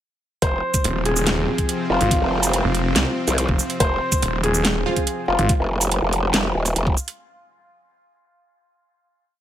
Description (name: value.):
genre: heavy wobble dubstep.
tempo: 142 BPM.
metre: 4/4.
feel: half-time.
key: F minor.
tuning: A4 = 440 Hz.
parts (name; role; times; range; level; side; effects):
felt-muted upright piano; melody; 0.4-5.5 s; F4 to C5; -25 LUFS; left 1 dB; dub echo.
supersaw pad; sustained chords; 0.4-5.5 s; C3 to C4; -27 LUFS; equal; vintage 12-bit sampler grit, sidechain pumping.
growl bass; bass; 0.4-7.0 s; Eb1 to C2; -21 LUFS; equal; chorus, overdrive.
dubstep drum kit; drums; 0.4-7.2 s; hi-hat, shaker, snare drum; -22 LUFS; right 2 dB; none.
electronic kick drum; drums; 0.4-7.0 s; none; -22 LUFS; equal; none.
snarling distorted saw bass; bass; 0.8-5.5 s; Eb1 to C2; -22 LUFS; equal; distortion, overdrive.
orchestra-hit-like synth stab; stabs; 4.9-5.7 s; F3 to F4; -28 LUFS; right 3 dB; built-in reverb, dub echo.
room: light reverb, digital ambience.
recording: none.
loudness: -18 LUFS.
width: side -11 dB against mid.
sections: 0.4-7.2 drop.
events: drop 0.4-7.2.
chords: 0.4 F5.